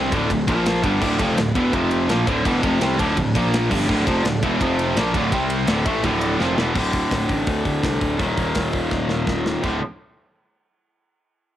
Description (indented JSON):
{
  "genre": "heavy metal",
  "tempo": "167 BPM",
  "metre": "4/4",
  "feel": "straight",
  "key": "D phrygian",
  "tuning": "A4 = 441 Hz",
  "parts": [
    { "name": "clear studio string section", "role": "sustained chords", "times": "0.0-6.7 s", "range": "C3 to Bb5", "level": "-32 LUFS", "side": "equal", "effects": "none" },
    { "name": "distorted electric guitar", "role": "riff", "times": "0.0-6.7 s", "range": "D2 to C4", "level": "-25 LUFS", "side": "equal", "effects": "distortion, cassette tape" },
    { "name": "high-gain distorted guitar", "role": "riff", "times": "0.0-9.8 s", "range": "D2 to C4", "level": "-21 LUFS", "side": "equal", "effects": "distortion, cassette tape" },
    { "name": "fuzz picked electric bass", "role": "bass", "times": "0.0-9.8 s", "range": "D1 to D2", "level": "-25 LUFS", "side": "equal", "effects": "overdrive" },
    { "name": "tight metal drum kit", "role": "drums", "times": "0.1-9.7 s", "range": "crash cymbal, hi-hat, kick drum, ride cymbal, snare drum", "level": "-26 LUFS", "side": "equal", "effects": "none" }
  ],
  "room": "small room reverb",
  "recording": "home recording on cassette",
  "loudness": "-18 LUFS",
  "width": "side -12 dB against mid",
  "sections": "0.0-6.8 A section; 6.8-9.6 B section; 9.6-11.1 C section",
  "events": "drum fill 6.4-6.8, 8.9-9.6",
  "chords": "0.5 Bb5; 0.8 Dm; 1.7 F5; 2.1 Dm; 3.3 Bb5; 3.7 Dm; 4.6 F5; 5.0 Dm; 5.3 C5; 5.7 Dm; 6.8 D5; 8.2 Eb5; 9.6 D5"
}